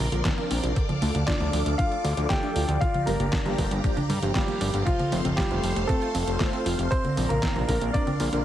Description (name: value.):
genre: italo disco.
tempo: 117 BPM.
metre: 4/4.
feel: straight.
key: D minor.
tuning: A4 = 440 Hz.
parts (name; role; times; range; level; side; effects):
warm grand piano; melody; 0.0-8.4 s; F3 to G5; -30 LUFS; right 1 dB; ping-pong delay.
phased string machine; sustained chords; 0.0-8.4 s; G4 to D6; -33 LUFS; equal; ensemble chorus, phaser.
analog pluck; arpeggios; 0.0-8.4 s; C3 to F4; -34 LUFS; right 3 dB; chorus, ping-pong delay.
fat analog bass; bass; 0.0-8.4 s; F1 to G2; -27 LUFS; equal; none.
mellow synth brass; stabs; 0.1-8.4 s; F3 to C5; -33 LUFS; left 2 dB; chorus.
detuned 8-bit digital drum machine; drums; 0.1-8.4 s; congas, handclaps, hi-hat, snare drum; -30 LUFS; equal; none.
electronic kick drum; drums; 0.3-8.0 s; none; -27 LUFS; equal; none.
room: light reverb.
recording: heavily compressed radio sound.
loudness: -23 LUFS.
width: side -12 dB against mid.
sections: 0.0-8.4 A section.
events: none.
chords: 0.0 Bbadd9; 0.8 Dm; 2.8 Gm7; 4.9 F; 6.9 Bbadd9.